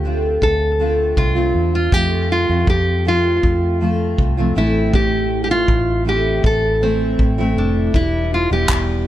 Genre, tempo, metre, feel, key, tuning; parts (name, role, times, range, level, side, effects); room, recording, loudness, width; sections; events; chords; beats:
acoustic pop; 80 BPM; 4/4; straight; A minor; A4 = 437 Hz
nylon-string guitar; melody; 0.0-9.1 s; C4 to A4; -19 LUFS; equal; tape echo
fingerpicked steel-string acoustic guitar; accompaniment; 0.0-9.1 s; F2 to F4; -21 LUFS; equal; double-tracked left and right
vintage muted fingered electric bass; bass; 0.0-9.1 s; E1 to F2; -20 LUFS; equal
unplugged drum kit; drums; 0.4-8.9 s; handclaps, kick drum; -19 LUFS; equal
little or no reverb; -14 LUFS; side -13 dB against mid
0.0-9.1 A section
0.0 Dm7; 1.9 F; 4.6 Am; 7.9 Em
0.41 1.17 | 1.92 2.67 3.43 4.18 | 4.93 5.68 6.44 7.19 | 7.94 8.70